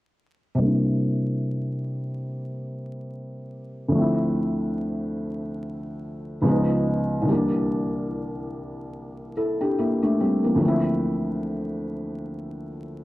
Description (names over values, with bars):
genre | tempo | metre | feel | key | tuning
hip hop | 72 BPM | 4/4 | swing 58% on 16ths | unclear | A4 = 440 Hz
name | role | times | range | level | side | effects
felt-muted upright piano | accompaniment | 0.5-13.0 s | C2 to A4 | -23 LUFS | equal | low-pass filter
room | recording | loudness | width
moderate spring reverb, RT60 1.2 s, small room ambience | dark, warm production, vinyl crackle | -22 LUFS | side -18 dB against mid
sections
0.6-7.3 A section; 7.3-13.0 B section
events
filter sweep on felt piano 0.6-7.3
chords
0.6 C9; 3.9 Dm7; 6.4 C#9; 7.3 C9; 10.6 Dm7